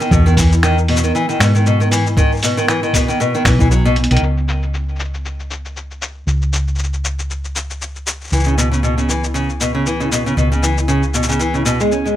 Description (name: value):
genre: folktronica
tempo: 117 BPM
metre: 4/4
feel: swing 56% on 16ths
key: unclear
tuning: A4 = 439 Hz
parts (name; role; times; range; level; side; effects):
- nylon-string guitar; arpeggios; 0.0-4.2, 8.3-12.2 s; B2 to C#4; -17 LUFS; equal; tape echo
- lo-fi sampler-style drum kit; drums; 0.0-12.1 s; finger snaps, hi-hat, shaker; -21 LUFS; left 2 dB; low-pass filter on perc, low-pass filter on hats, low-pass filter on snare
- hollow-body short-scale fingered electric bass; bass; 0.1-12.2 s; B1 to G#2; -17 LUFS; equal; none
- electronic kick drum; drums; 0.1-3.7 s; none; -16 LUFS; equal; none
room: light reverb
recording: none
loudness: -14 LUFS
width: side -12 dB against mid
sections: 0.0-4.2 A section; 4.2-12.2 B section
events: drum fill 4.0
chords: 0.0 Emaj7; 4.2 N.C.